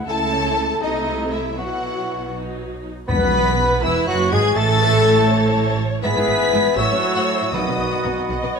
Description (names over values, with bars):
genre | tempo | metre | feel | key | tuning
classical, dramatic, fast romantic movement for symphony orchestra | 80 BPM (dotted quarters) | 6/8 | rubato | E major | A4 = 440 Hz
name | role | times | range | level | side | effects
dark clarinet | second line | 0.0-8.6 s | E4 to E5 | -27 LUFS | left 3 dB | none
warm symphonic viola section | accompaniment | 0.0-8.6 s | F#3 to D#5 | -28 LUFS | right 1 dB | none
mellow French horn section | sustained chords | 0.0-8.3 s | F#3 to B4 | -27 LUFS | left 8 dB | none
dark symphonic cello section | bass | 0.0-8.5 s | E2 to C#3 | -26 LUFS | right 2 dB | none
rich symphonic double bass section | bass | 0.0-8.4 s | E1 to C#2 | -25 LUFS | right 5 dB | none
warm symphonic violin section | melody | 0.1-8.3 s | D#5 to B6 | -25 LUFS | left 2 dB | none
dark cor anglais | second line | 0.1-8.6 s | D#4 to C#5 | -28 LUFS | right 2 dB | none
mellow large flute ensemble | second line | 0.1-8.6 s | D#5 to B5 | -28 LUFS | left 2 dB | none
warm symphonic violin section | second line | 0.1-8.5 s | B3 to F#5 | -29 LUFS | left 2 dB | none
clear bassoon | accompaniment | 3.1-8.6 s | E3 to B3 | -27 LUFS | right 1 dB | none
clear trombone section | sustained chords | 3.1-8.6 s | E3 to B3 | -30 LUFS | right 4 dB | none
clear trumpet section | stabs | 3.1-8.6 s | E4 to B4 | -25 LUFS | equal | none
timpani | percussion | 3.1-3.8, 7.5-8.3 s | E2 to B2 | -27 LUFS | left 1 dB | none
room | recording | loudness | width
wet scoring stage reverb, RT60 1.5 s | none | -16 LUFS | side -5 dB against mid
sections
0.0-3.1 A section; 3.1-8.6 B section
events
none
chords
0.1 A/C#; 0.8 Am/C; 1.6 Bsus4; 2.3 B; 3.1 E/B; 4.6 Aadd9; 6.0 E/G#; 6.8 F#m7/A; 7.5 B